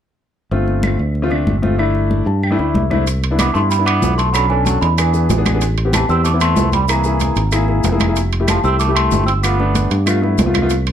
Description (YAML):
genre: Afro-Cuban jazz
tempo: 189 BPM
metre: 4/4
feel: straight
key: C major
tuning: A4 = 440 Hz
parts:
  - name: warm grand piano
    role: accompaniment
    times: 0.5-10.7 s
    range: A3 to A5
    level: -20 LUFS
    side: left 3 dB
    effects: none
  - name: fingered electric bass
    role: bass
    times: 0.5-10.9 s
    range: F1 to G2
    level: -17 LUFS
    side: equal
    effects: none
  - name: congas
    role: percussion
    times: 0.5-10.9 s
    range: none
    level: -22 LUFS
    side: left 1 dB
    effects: none
  - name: claves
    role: percussion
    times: 0.8-10.7 s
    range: none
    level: -28 LUFS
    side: right 2 dB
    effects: none
  - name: maracas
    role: percussion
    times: 3.1-10.9 s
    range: none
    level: -32 LUFS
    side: left 8 dB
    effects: none
  - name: timbales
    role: percussion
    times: 3.1-10.9 s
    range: none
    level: -24 LUFS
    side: right 10 dB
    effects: none
  - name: celesta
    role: melody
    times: 3.4-10.0 s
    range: Ab5 to E6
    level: -20 LUFS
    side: right 2 dB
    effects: plate reverb
  - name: trombone with metal mute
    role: second line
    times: 3.4-10.0 s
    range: E3 to C4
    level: -23 LUFS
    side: right 4 dB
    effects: none
room: light reverb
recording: dark, warm production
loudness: -13 LUFS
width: side -9 dB against mid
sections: 0.5-3.1 A section; 3.1-10.9 B section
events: grand piano fill 2.1-3.1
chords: 0.5 G7sus4; 1.8 C6/G; 3.1 Cmaj9; 4.3 Bm9; 5.0 E7; 5.6 Am7; 6.9 Caug7; 8.2 Fmaj7; 9.4 G9